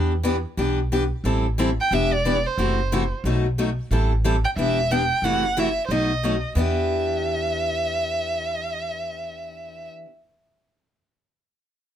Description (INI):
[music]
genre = acoustic string swing (jazz manouche)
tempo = 180 BPM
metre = 4/4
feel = swing 61% on 8ths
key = E minor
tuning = A4 = 440 Hz
[part]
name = picked steel-string acoustic guitar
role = accompaniment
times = 0.0-10.1 s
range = B2 to A4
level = -25 LUFS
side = left 2 dB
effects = none
[part]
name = upright bass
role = bass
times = 0.0-9.9 s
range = E1 to E2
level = -25 LUFS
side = equal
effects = none
[part]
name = warm violin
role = melody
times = 1.8-9.9 s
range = C5 to G5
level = -24 LUFS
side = right 2 dB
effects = none
[sound]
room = light reverb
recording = close, detailed microphones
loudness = -20 LUFS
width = side -10 dB against mid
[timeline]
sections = 0.0-1.2 A section; 1.2-6.6 B section; 6.6-9.2 C section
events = none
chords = 0.0 Em7; 1.2 Am7; 1.9 Em7; 2.6 F#m7b5; 3.2 B7; 3.9 Am7; 4.6 Em7; 5.2 F#m7b5; 5.9 B7; 6.6 Em7